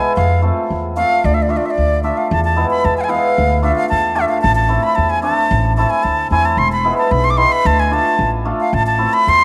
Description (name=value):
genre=klezmer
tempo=112 BPM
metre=2/4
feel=straight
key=D dorian sharp4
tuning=A4 = 444 Hz
part: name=breathy bright concert flute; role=melody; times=0.0-9.4 s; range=D5 to D6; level=-18 LUFS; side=equal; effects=none
part: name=cimbalom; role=accompaniment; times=0.0-9.1 s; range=G#3 to F4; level=-21 LUFS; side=equal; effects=none
part: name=upright bass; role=bass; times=0.2-9.4 s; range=E1 to F2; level=-20 LUFS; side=equal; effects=none
room=moderate plate reverb, RT60 3.2 s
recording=none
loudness=-15 LUFS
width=mono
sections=0.0-2.3 A section; 2.3-9.4 B section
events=none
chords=0.2 F; 1.2 Dm; 2.3 E; 3.4 Dm; 4.4 Am; 6.6 E; 7.6 Dm; 8.7 Am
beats=| 0.16 0.69 | 1.23 1.76 | 2.30 2.83 | 3.37 3.90 | 4.44 4.97 | 5.51 6.04 | 6.58 7.11 | 7.65 8.18 | 8.71 9.25